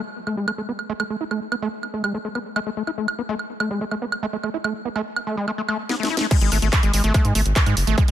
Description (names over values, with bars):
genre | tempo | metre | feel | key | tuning
psychedelic trance | 144 BPM | 4/4 | straight | unclear | A4 = 435 Hz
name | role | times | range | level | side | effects
overdriven acid bass | riff | 0.3-8.1 s | G#3 to E4 | -25 LUFS | moving between left 8 dB and right 8 dB | distortion, auto-pan, sidechain pumping, tape echo
techno drum kit | drums | 0.3-8.1 s | crash cymbal, handclaps, hi-hat, snare drum, woodblock | -27 LUFS | right 2 dB | overdrive
electronic kick drum | drums | 6.3-8.1 s | none | -18 LUFS | equal | distortion, overdrive
round analog bass | bass | 6.4-8.1 s | F#1 to G#2 | -20 LUFS | equal | none
room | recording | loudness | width
light reverb | none | -20 LUFS | side -11 dB against mid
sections
0.0-6.3 A section; 6.3-8.1 B section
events
drum fill 5.9-6.3; drop 6.3-8.1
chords
0.0 A5; 6.3 G#5